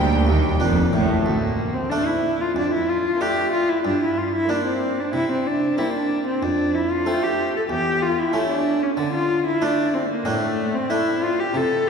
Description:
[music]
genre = classical, baroque-style concerto movement with solo episodes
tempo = 93 BPM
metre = 4/4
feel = straight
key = D minor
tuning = A4 = 440 Hz
[part]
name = clear chamber violin section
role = melody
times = 0.0-11.4 s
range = C5 to G5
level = -38 LUFS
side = equal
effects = none
[part]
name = rich cello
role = melody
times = 0.0-11.9 s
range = G3 to A4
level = -21 LUFS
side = left 1 dB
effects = none
[part]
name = warm chamber violin section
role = second line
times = 0.0-11.4 s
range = G4 to Bb4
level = -36 LUFS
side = left 1 dB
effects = none
[part]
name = harpsichord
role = accompaniment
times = 0.0-11.9 s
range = D2 to D4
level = -26 LUFS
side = equal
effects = none
[part]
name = rich symphonic viola section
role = accompaniment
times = 0.0-11.4 s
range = G3 to Bb3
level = -33 LUFS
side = right 2 dB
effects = none
[part]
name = rich studio cello section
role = bass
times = 0.0-11.9 s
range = D2 to D3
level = -28 LUFS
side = right 1 dB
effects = none
[part]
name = rich symphonic double bass section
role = bass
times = 0.0-1.3 s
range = F1 to Eb2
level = -24 LUFS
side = right 2 dB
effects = none
[sound]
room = wet church reverb, RT60 3.2 s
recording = minimal, uncompressed stereo recording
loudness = -19 LUFS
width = side -6 dB against mid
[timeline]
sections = 0.0-1.3 A section; 1.3-11.9 B section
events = none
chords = 0.0 Gm; 1.3 Dm; 2.5 Dm/F; 3.8 Gm; 5.1 C5; 6.4 F; 7.7 A/E; 9.0 D5

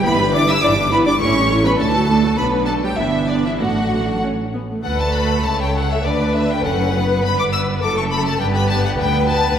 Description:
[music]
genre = quick classical-period movement for string orchestra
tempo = 102 BPM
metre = 2/4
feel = rubato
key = D major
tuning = A4 = 441 Hz
[part]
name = clear chamber violin section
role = melody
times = 0.0-9.6 s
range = D5 to E6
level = -21 LUFS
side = left 2 dB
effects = none
[part]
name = rich chamber violin section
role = second line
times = 0.0-9.6 s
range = A3 to E5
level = -23 LUFS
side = left 2 dB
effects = none
[part]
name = rich studio viola section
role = accompaniment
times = 0.0-9.6 s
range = E3 to B4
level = -21 LUFS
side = right 1 dB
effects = none
[part]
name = clear symphonic double bass section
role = bass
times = 0.0-9.6 s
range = F#1 to D2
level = -22 LUFS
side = right 2 dB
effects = none
[part]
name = rich studio cello section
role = bass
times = 0.0-9.6 s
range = C#2 to E4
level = -23 LUFS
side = right 2 dB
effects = none
[sound]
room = wet scoring stage reverb, RT60 1.8 s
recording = heard from further back in the room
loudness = -15 LUFS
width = side -8 dB against mid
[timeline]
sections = 0.0-4.8 A section; 4.8-9.6 B section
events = none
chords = 0.0 Em7/G; 1.2 A7; 1.8 D; 2.4 Bm; 3.0 Em7/G; 3.6 D/A; 4.2 N.C.; 4.8 D5; 5.5 A/C#; 6.0 D; 7.2 G; 7.8 F#madd11; 8.4 G

